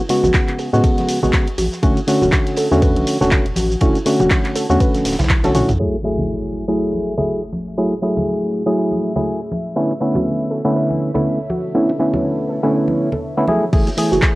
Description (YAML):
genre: deep house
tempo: 121 BPM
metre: 4/4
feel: swing 57% on 16ths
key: F# minor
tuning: A4 = 440 Hz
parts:
  - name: percussive organ stab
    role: stabs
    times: 0.1-14.4 s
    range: C#3 to G#4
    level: -17 LUFS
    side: equal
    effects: chorus, cassette tape, sidechain pumping, tape echo
  - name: deep house drum kit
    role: drums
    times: 0.1-5.8, 13.7-14.3 s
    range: crash cymbal, handclaps, hi-hat, shaker, toms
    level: -23 LUFS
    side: equal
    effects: low-pass filter on hats, cassette tape, low-pass filter on perc, low-pass filter on snare, low-pass filter on toms, low-pass filter on cymbals, low-pass filter on room
  - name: natural country drum kit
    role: drums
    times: 0.1-5.8, 13.7-14.4 s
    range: ride cymbal, snare drum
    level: -36 LUFS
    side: right 1 dB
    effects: sidechain pumping on cymbals, high-pass filter on cymbals, cassette tape, high-pass filter on snare, high-pass filter on room
  - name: warbly dusty pluck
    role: arpeggios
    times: 0.2-5.6, 9.8-14.2 s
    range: E4 to B4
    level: -24 LUFS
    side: right 1 dB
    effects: chorus, sidechain pumping, cassette tape, tape echo
  - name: round analog bass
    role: bass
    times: 0.2-5.8, 13.7-14.2 s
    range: D1 to A2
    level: -21 LUFS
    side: equal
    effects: sidechain pumping
  - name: congas and bongos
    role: percussion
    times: 0.2-14.0 s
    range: none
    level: -26 LUFS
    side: equal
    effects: none
  - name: electronic kick drum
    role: drums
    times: 0.3-5.4, 13.7-14.3 s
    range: none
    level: -17 LUFS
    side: equal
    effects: cassette tape
  - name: deep dark ambient pad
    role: sustained chords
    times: 7.4-14.4 s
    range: D3 to E5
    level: -29 LUFS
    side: equal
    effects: chorus, built-in reverb, sidechain pumping, cassette tape
  - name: impact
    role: sound effects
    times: 5.8-7.8 s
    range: none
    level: -30 LUFS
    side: equal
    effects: none
room: light reverb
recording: home recording on cassette, low-pass filter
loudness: -15 LUFS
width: side -19 dB against mid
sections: 0.0-5.8 A section; 5.8-13.7 B section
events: drum fill 5.3-5.8; impact 5.8-7.8; filter sweep on ambient pad 5.8-13.7; filter sweep 5.8-13.7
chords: 0.0 Amaj13; 1.8 E13sus4; 5.8 F#m9; 9.8 Bm11; 13.5 F#m9